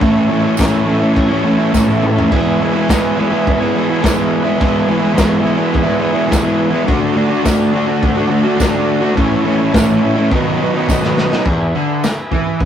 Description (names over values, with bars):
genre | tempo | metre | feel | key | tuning
garage rock duo or trio | 105 BPM | 4/4 | straight | E mixolydian | A4 = 440 Hz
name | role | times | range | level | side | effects
overdriven combo organ | sustained chords | 0.0-12.7 s | E4 to A5 | -27 LUFS | equal | none
crunchy overdriven guitar | riff | 0.0-12.7 s | E2 to F#4 | -13 LUFS | equal | none
crunchy breakbeat drum kit | drums | 0.0-12.7 s | crash cymbal, kick drum, snare drum, toms | -19 LUFS | equal | none
tambourine | percussion | 0.6-12.2 s | none | -30 LUFS | right 5 dB | none
room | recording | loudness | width
wet small room reverb, RT60 0.5 s | rough rehearsal-room recording | -12 LUFS | side -9 dB against mid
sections
0.0-11.5 A section; 11.5-12.7 B section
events
transistor combo organ fill 1.4-2.3; drum fill 1.7-2.3, 10.9-11.5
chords
0.0 A; 2.3 E; 6.9 D; 9.2 A; 10.3 B; 11.5 E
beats
| 0.01 0.58 1.16 1.73 | 2.31 2.88 3.45 4.02 | 4.60 5.17 5.74 6.31 | 6.88 7.45 8.03 8.60 | 9.17 9.74 10.31 10.88 | 11.45 12.03 12.60